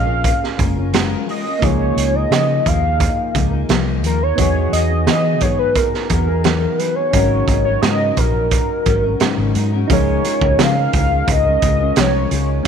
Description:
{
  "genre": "indie pop, bedroom pop",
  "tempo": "87 BPM",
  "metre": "4/4",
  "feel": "straight",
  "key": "Db major",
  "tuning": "A4 = 440 Hz",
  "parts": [
    { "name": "warm velvety synth lead", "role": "melody", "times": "0.0-12.5 s", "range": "Bb4 to F5", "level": "-19 LUFS", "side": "equal", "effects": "wide subtle chorus, slapback echo" },
    { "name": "fingerpicked steel-string acoustic guitar", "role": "accompaniment", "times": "0.0-12.7 s", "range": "Ab2 to Bb4", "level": "-22 LUFS", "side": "left 13 dB", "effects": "analog chorus, warbly pitch drift" },
    { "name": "soft electric-piano-like synth keys", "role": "accompaniment", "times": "0.0-12.7 s", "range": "Bb3 to Bb4", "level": "-26 LUFS", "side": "right 14 dB", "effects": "chorus, cassette tape" },
    { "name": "vintage muted fingered electric bass", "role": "bass", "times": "0.0-12.7 s", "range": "Gb1 to E3", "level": "-19 LUFS", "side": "equal", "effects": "none" },
    { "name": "raw garage drum kit", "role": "drums", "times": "0.2-12.7 s", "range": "hi-hat, kick drum, snare drum", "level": "-20 LUFS", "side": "right 3 dB", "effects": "none" }
  ],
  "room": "light reverb, studio reverb",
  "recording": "1960s-style stereo with parts hard left and right",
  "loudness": "-14 LUFS",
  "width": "side -7 dB against mid",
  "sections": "0.0-9.9 A section; 9.9-12.7 B section",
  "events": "none",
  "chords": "0.0 Gbmaj9; 1.6 Db69; 4.4 Emaj9; 7.1 Ab9sus4; 9.9 Db6",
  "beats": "0.24 0.93 | 1.62 2.31 3.00 3.69 | 4.38 5.07 5.76 6.45 | 7.14 7.83 8.52 9.21 | 9.89 10.58 11.27 11.96 | 12.65"
}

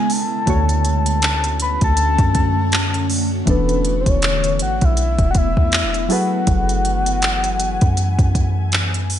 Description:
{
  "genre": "contemporary R&B",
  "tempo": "80 BPM",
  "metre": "4/4",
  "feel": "swing 58% on 16ths",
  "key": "F# minor",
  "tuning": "A4 = 442 Hz",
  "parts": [
    { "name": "soft octave-layered synth lead", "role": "melody", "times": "0.0-8.7 s", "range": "B4 to B5", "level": "-22 LUFS", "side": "left 2 dB", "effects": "chorus, tremolo, digital delay" },
    { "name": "warm analog keys", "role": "accompaniment", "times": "0.0-9.2 s", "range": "C#3 to C#5", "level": "-26 LUFS", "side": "left 1 dB", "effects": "chorus" },
    { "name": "ethereal airy pad", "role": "sustained chords", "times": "0.0-9.2 s", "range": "C#3 to G#5", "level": "-25 LUFS", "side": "equal", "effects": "ensemble chorus, built-in reverb, phaser" },
    { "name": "smooth R&B drum kit", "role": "drums", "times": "0.1-9.2 s", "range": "handclaps, hi-hat, kick drum", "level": "-19 LUFS", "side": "equal", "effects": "none" },
    { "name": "soft 808-style bass", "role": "bass", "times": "0.5-9.2 s", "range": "E1 to F#2", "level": "-20 LUFS", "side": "equal", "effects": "none" }
  ],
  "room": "light reverb",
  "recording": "nothing above 11.0 kHz",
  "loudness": "-15 LUFS",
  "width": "side -10 dB against mid",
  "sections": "0.0-9.2 A section",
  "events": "none",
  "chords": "0.5 Dmaj7; 3.5 E7sus4; 6.1 F#m11",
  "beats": "| 0.47 1.23 1.98 2.73 | 3.48 4.22 4.97 5.72 | 6.47 7.22 7.97 8.72"
}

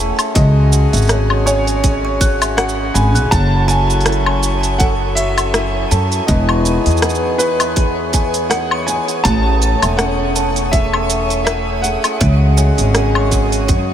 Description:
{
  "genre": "folktronica",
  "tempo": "81 BPM",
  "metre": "4/4",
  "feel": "swing 56% on 16ths",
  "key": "F# dorian",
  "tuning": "A4 = 442 Hz",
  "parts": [
    { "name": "felt-muted upright piano", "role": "melody", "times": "0.0-13.9 s", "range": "B4 to A5", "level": "-21 LUFS", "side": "equal", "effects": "ping-pong delay" },
    { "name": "hand-pumped harmonium", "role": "sustained chords", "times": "0.0-13.9 s", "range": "C#3 to A4", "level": "-23 LUFS", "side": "left 2 dB", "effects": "vintage 12-bit sampler grit" },
    { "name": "nylon-string guitar", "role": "arpeggios", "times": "0.0-13.9 s", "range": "C#3 to A4", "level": "-23 LUFS", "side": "right 1 dB", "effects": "ping-pong delay" },
    { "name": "upright bass", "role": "bass", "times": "0.0-13.9 s", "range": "E1 to F#2", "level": "-16 LUFS", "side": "equal", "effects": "none" },
    { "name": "organic electronic drum kit", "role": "drums", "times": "0.2-13.9 s", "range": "cabasa, hi-hat, rim click, woodblock", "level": "-21 LUFS", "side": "left 1 dB", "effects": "none" },
    { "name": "kalimba", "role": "second line", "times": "0.4-13.9 s", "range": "E5 to F#6", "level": "-26 LUFS", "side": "right 4 dB", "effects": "tape echo" },
    { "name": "electronic kick drum", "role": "drums", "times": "0.4-13.9 s", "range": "none", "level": "-16 LUFS", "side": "equal", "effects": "none" },
    { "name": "twinkling granular texture", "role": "texture", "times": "3.7-13.9 s", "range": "C#5 to D#6", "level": "-27 LUFS", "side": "left 1 dB", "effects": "built-in reverb" }
  ],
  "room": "moderate huge ambient reverb, RT60 7.6 s",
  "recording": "dreamy mix soaked in reverb",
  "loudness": "-12 LUFS",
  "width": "side -10 dB against mid",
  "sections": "0.0-13.9 A section",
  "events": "none",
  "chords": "0.4 C#sus4; 3.3 F#m7; 6.3 Emaj7; 12.2 C#sus4",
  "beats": "| 0.35 1.10 1.84 2.58 | 3.32 4.06 4.80 5.54 | 6.28 7.02 7.76 8.50 | 9.24 9.98 10.73 11.47 | 12.21 12.95 13.69"
}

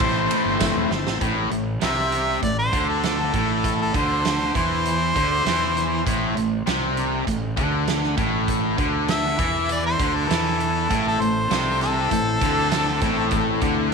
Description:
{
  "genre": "classic rock",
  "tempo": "99 BPM",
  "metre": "4/4",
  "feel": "straight",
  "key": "A minor",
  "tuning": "A4 = 440 Hz",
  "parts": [
    { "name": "clear harmonica", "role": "melody", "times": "0.0-13.6 s", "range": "A4 to E5", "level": "-24 LUFS", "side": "equal", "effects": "none" },
    { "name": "fingerpicked twelve-string acoustic guitar", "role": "accompaniment", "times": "0.0-1.2, 10.9-13.9 s", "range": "A2 to C5", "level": "-29 LUFS", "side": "left 12 dB", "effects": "none" },
    { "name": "bright tonewheel organ", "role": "sustained chords", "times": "0.0-1.2, 10.9-13.9 s", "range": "C4 to C5", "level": "-31 LUFS", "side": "equal", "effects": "overdrive, slow rotary speaker" },
    { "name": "distorted electric guitar", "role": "riff", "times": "0.0-13.9 s", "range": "A2 to E4", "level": "-26 LUFS", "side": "left 13 dB", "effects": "overdrive" },
    { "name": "distorted electric guitar", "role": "riff", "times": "0.0-13.9 s", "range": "A2 to A3", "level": "-26 LUFS", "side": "right 13 dB", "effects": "distortion" },
    { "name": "fuzz fingered electric bass", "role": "bass", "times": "0.0-13.9 s", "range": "E1 to E2", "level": "-28 LUFS", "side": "equal", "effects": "overdrive" },
    { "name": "huge arena drum kit", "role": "drums", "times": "0.0-13.8 s", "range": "hi-hat, kick drum, ride cymbal, snare drum", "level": "-27 LUFS", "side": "right 4 dB", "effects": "none" },
    { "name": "tambourine", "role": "percussion", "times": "0.6-0.7 s", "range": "none", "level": "-37 LUFS", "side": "right 15 dB", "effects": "none" }
  ],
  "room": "moderate plate reverb, RT60 2.5 s",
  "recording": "1960s-style stereo with parts hard left and right",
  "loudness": "-19 LUFS",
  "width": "side -5 dB against mid",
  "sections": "0.0-1.2 A section; 1.2-13.9 B section",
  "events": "drum fill 0.9-1.2; harmonica solo 1.2-13.9",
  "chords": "0.0 Am",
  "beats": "0.01 0.61 | 1.22 1.82 2.42 3.03 | 3.64 4.24 4.85 5.45 | 6.06 6.67 7.27 7.88 | 8.48 9.09 9.69 10.30 | 10.90 11.51 12.11 12.72 | 13.32 13.93"
}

